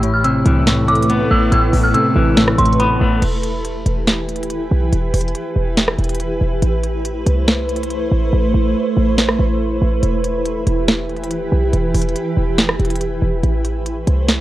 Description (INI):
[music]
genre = hip hop, trap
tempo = 141 BPM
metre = 4/4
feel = half-time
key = E minor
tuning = A4 = 443 Hz
[part]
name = dark detuned synth bell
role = melody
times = 0.0-3.2 s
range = B5 to F6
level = -19 LUFS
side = equal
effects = chorus, low-pass filter, ping-pong delay
[part]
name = semi-hollow electric guitar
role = accompaniment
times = 0.0-3.2 s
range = A2 to B3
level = -16 LUFS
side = left 1 dB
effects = low-pass filter
[part]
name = granular cloud pad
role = sustained chords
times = 0.0-14.4 s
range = E3 to C5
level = -20 LUFS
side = right 1 dB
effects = built-in reverb
[part]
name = short 808-style bass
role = bass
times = 0.0-14.4 s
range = E1 to C2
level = -18 LUFS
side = equal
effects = none
[part]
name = trap drum kit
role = drums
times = 0.0-14.4 s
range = crash cymbal, hi-hat, rim click, snare drum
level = -18 LUFS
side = equal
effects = none
[sound]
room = light reverb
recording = worn, warbling old tape, cassette tape, warbly pitch drift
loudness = -14 LUFS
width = side -15 dB against mid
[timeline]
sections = 0.0-3.2 A section; 3.2-14.4 B section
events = hi-hats muted 8.3-10.0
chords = 0.0 Amadd9; 3.2 Em; 6.6 Amadd9; 10.0 Em; 13.4 Amadd9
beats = 0.24 0.67 1.09 | 1.52 1.95 2.37 2.80 | 3.22 3.65 4.07 4.50 | 4.92 5.35 5.77 6.20 | 6.63 7.05 7.48 7.90 | 8.33 8.75 9.18 9.60 | 10.03 10.46 10.88 11.31 | 11.73 12.16 12.58 13.01 | 13.43 13.86 14.29